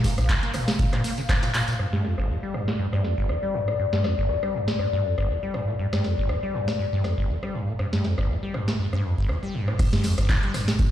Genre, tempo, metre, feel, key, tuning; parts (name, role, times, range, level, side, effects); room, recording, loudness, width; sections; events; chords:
acid house; 120 BPM; 4/4; swing 55% on 16ths; G minor; A4 = 439 Hz
warbly tape-like pad; sustained chords; 0.0-9.8 s; D5 to F5; -31 LUFS; left 7 dB; chorus, built-in reverb, sidechain pumping
acid bass, saw; riff; 0.0-10.9 s; G1 to Bb3; -25 LUFS; equal; tube saturation, lush chorus, cassette tape, digital delay
booming analog drum machine; drums; 0.0-10.9 s; crash cymbal, handclaps, hi-hat, rim click, snare drum; -30 LUFS; equal; low-pass filter on snare, low-pass filter on hats, low-pass filter on cymbals, low-pass filter on room
electronic kick drum; drums; 0.0-1.4, 9.8-10.9 s; -24 LUFS; equal
jazz brush drum kit; drums; 0.0-10.9 s; hi-hat, snare drum, tambourine; -41 LUFS; right 1 dB
tambourine; percussion; 0.0-1.8, 9.8-10.9 s; -41 LUFS; left 2 dB
light reverb, small room ambience; played on a big sound system in a bare room, stone room reverb; -22 LUFS; side -12 dB against mid
0.0-1.8 A section; 1.8-9.8 B section; 9.8-10.9 A section
drop 0.0-1.8, 9.8-10.9; drum fill 1.5
0.0 Bb5; 1.8 G7(no3)